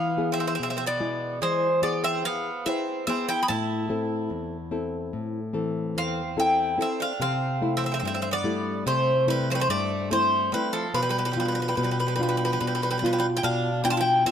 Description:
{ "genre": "greek folk, Greek bouzouki band", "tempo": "145 BPM (eighths)", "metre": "9/8", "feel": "straight", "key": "unclear", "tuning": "A4 = 440 Hz", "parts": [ { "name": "Greek bouzouki", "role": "melody", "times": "0.0-14.3 s", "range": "A4 to B5", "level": "-26 LUFS", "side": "equal", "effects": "slapback echo" }, { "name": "Greek bouzouki", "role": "second line", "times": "0.0-14.3 s", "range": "F3 to G#4", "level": "-32 LUFS", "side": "right 6 dB", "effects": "none" }, { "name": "nylon-string guitar", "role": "accompaniment", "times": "0.0-14.3 s", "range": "E2 to B4", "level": "-27 LUFS", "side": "left 2 dB", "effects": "none" } ], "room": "moderate plate reverb, RT60 3.1 s", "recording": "none", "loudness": "-23 LUFS", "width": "side -8 dB against mid", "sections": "0.0-7.2 A section; 7.2-14.3 A section", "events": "none", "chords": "0.0 E; 3.5 Am; 7.2 C6; 10.9 Bdim" }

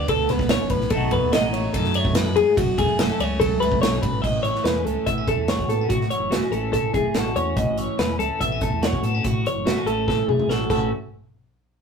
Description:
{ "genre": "math rock and midwest emo", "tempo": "144 BPM", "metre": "4/4", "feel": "straight", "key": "A lydian", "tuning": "A4 = 440 Hz", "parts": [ { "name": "clean electric guitar", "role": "accompaniment", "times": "0.0-10.9 s", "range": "F#2 to F#4", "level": "-28 LUFS", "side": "right 2 dB", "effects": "phaser" }, { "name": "twelve-string electric guitar", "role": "arpeggios", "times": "0.0-10.9 s", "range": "F#4 to E5", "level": "-23 LUFS", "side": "left 2 dB", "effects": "none" }, { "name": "overdriven fingered electric bass", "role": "bass", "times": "0.0-10.9 s", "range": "E1 to A2", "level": "-28 LUFS", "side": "equal", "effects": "none" }, { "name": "modern studio drum kit", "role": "drums", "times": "0.1-10.8 s", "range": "crash cymbal, hi-hat, kick drum, ride cymbal, snare drum, toms", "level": "-25 LUFS", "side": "right 1 dB", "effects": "none" } ], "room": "moderate small room reverb, RT60 0.6 s", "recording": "rough rehearsal-room recording, faint mains hum", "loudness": "-19 LUFS", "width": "side -6 dB against mid", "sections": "0.0-4.2 A section; 4.2-10.9 B section", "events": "drum fill 10.1-10.9", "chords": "0.0 Gmaj7; 0.9 B7; 2.6 F#m; 4.2 A6; 10.9 N.C." }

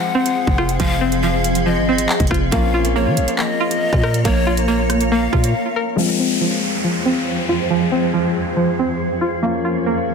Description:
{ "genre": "hip hop, drill", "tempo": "139 BPM", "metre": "4/4", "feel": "half-time", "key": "F minor", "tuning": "A4 = 435 Hz", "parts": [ { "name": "breathy mellow pan flute", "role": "second line", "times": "0.0-5.9 s", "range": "Db5 to Gb5", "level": "-24 LUFS", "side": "left 5 dB", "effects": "digital delay" }, { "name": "warm concert grand piano", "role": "accompaniment", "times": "0.0-10.1 s", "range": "F3 to Ab4", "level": "-25 LUFS", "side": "left 8 dB", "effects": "low-pass filter" }, { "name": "granular cloud pad", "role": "sustained chords", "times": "0.0-10.1 s", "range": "F2 to F5", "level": "-22 LUFS", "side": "right 2 dB", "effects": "built-in reverb, low-pass filter" }, { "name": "string-like resonator pluck", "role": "arpeggios", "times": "0.0-10.1 s", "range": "F3 to Bb4", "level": "-21 LUFS", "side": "right 2 dB", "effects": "chorus, low-pass filter, digital delay" }, { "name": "drill drum kit", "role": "drums", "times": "0.3-5.5 s", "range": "handclaps, hi-hat, kick drum, rim click", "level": "-20 LUFS", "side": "equal", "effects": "none" }, { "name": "growling 808-style bass", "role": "bass", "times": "0.5-5.5 s", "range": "F1 to F3", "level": "-20 LUFS", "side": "equal", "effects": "none" }, { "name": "downlifter and swell", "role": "sound effects", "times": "6.0-10.1 s", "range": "none", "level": "-25 LUFS", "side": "left 2 dB", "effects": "none" } ], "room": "light reverb", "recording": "dense, heavily limited modern master", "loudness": "-15 LUFS", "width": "side -5 dB against mid", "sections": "0.0-6.0 A section; 6.0-10.1 B section", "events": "break 5.5-6.0; filter sweep 6.0-10.1", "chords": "0.0 Fm; 2.5 Bbm; 6.0 Fm; 9.4 Bbm" }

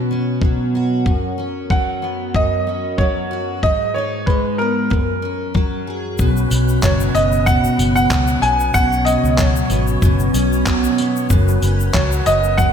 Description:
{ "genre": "acoustic pop", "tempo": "94 BPM", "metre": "4/4", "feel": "swing 55% on 16ths", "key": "B major", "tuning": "A4 = 441 Hz", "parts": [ { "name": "clear upright piano", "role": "melody", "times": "0.0-12.7 s", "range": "A#4 to G#5", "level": "-19 LUFS", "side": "right 2 dB", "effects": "slapback echo, tape echo" }, { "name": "picked steel-string acoustic guitar", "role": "accompaniment", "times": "0.0-12.7 s", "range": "F#2 to G#4", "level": "-19 LUFS", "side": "equal", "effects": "double-tracked left and right" }, { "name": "dusty soul sampler-style drum kit", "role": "drums", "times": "0.4-12.7 s", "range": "handclaps, kick drum, tambourine", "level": "-19 LUFS", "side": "equal", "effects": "none" }, { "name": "tonewheel organ", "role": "sustained chords", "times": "6.2-12.7 s", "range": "F#3 to C#5", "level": "-28 LUFS", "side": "right 1 dB", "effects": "overdrive, fast rotary speaker" }, { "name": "vintage muted fingered electric bass", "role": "bass", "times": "6.2-12.7 s", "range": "F#1 to C#2", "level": "-19 LUFS", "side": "equal", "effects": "none" }, { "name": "egg shaker", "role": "percussion", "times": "6.2-12.7 s", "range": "none", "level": "-35 LUFS", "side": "left 11 dB", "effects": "none" } ], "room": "moderate scoring stage reverb, RT60 2.0 s", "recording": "big arena sound", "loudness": "-15 LUFS", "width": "side -7 dB against mid", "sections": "0.0-6.2 A section; 6.2-12.7 B section", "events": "none", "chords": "0.0 Bsus2; 1.1 F#sus4; 3.6 G#m; 4.9 F#add9; 6.2 Bsus2; 11.3 F#sus4" }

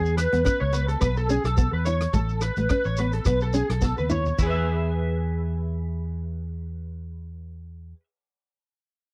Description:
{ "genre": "highlife guitar band", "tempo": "107 BPM", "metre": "4/4", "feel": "swing 55% on 16ths", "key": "E major", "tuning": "A4 = 441 Hz", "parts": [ { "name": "nylon-string guitar", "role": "accompaniment", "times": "0.0-4.6 s", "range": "E3 to E4", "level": "-32 LUFS", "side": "equal", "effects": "none" }, { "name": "electric guitar at the edge of break-up", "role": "arpeggios", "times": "0.0-8.0 s", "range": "E4 to E5", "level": "-30 LUFS", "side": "equal", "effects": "ensemble chorus, slapback echo" }, { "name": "fingered electric bass", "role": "bass", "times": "0.0-7.9 s", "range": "A1 to E2", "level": "-28 LUFS", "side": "equal", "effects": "none" }, { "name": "shekere", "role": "percussion", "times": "0.1-4.6 s", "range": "none", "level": "-34 LUFS", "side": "equal", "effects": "none" }, { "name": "warm soul drum kit", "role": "drums", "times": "0.2-4.5 s", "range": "crash cymbal, hi-hat, kick drum, rim click, snare drum, toms", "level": "-29 LUFS", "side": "equal", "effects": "none" } ], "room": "little or no reverb", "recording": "dry, close 1970s-style studio recording", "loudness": "-25 LUFS", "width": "mono", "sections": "0.0-4.4 A section; 4.4-6.6 B section", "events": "drum fill 3.8-4.4", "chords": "0.0 E; 1.0 Bsus4; 2.1 A; 3.3 Bsus4; 4.4 E" }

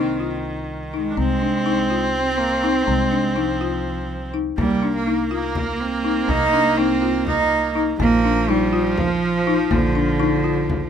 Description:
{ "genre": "contemporary instrumental, chamber music in an uneven meter", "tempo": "246 BPM (eighths)", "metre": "7/8", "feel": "straight", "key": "C minor", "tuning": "A4 = 439 Hz", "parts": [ { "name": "bright cello", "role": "melody", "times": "0.0-10.9 s", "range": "D3 to Eb4", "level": "-22 LUFS", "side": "right 5 dB", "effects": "none" }, { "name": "bright viola", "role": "second line", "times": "0.0-10.9 s", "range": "Eb3 to D4", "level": "-24 LUFS", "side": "right 2 dB", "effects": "none" }, { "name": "folk marimba with medium hard mallets", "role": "arpeggios", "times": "0.0-10.8 s", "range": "Bb3 to F4", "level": "-23 LUFS", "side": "left 7 dB", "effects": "none" }, { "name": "upright bass", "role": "bass", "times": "0.0-10.9 s", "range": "Bb1 to C2", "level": "-28 LUFS", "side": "right 1 dB", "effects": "none" }, { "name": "frame drum", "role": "percussion", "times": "4.6-10.9 s", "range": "none", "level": "-26 LUFS", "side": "left 3 dB", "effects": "none" } ], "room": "light reverb", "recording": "close, detailed microphones", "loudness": "-18 LUFS", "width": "side -8 dB against mid", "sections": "0.0-10.9 A section", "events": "none", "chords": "0.0 Cm; 1.2 Fm7/C; 4.6 Cm7; 8.0 Bb" }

